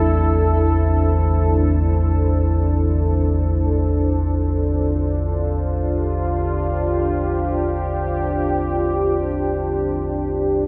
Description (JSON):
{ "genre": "dark ambient drone", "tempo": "free time", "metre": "none", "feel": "none", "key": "unclear", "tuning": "A4 = 440 Hz", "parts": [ { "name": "deep dark ambient pad", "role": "sustained chords", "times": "0.0-10.7 s", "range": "D4 to C5", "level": "-23 LUFS", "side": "equal", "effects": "chorus, built-in reverb" }, { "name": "deep rumbling drone", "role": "drone", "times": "0.0-10.7 s", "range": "A1 to E2", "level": "-22 LUFS", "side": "equal", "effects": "built-in reverb, subtle chorus" }, { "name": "quartz singing bowl", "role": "texture", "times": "0.0-10.7 s", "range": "none", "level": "barely audible", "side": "none", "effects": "none" } ], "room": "moderate plate reverb, RT60 2.3 s", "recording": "dreamy mix soaked in reverb", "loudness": "-20 LUFS", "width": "mono", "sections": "0.0-10.7 A section", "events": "filter sweep on synth drone 0.0-10.7", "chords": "0.0 Am; 3.2 Csus4" }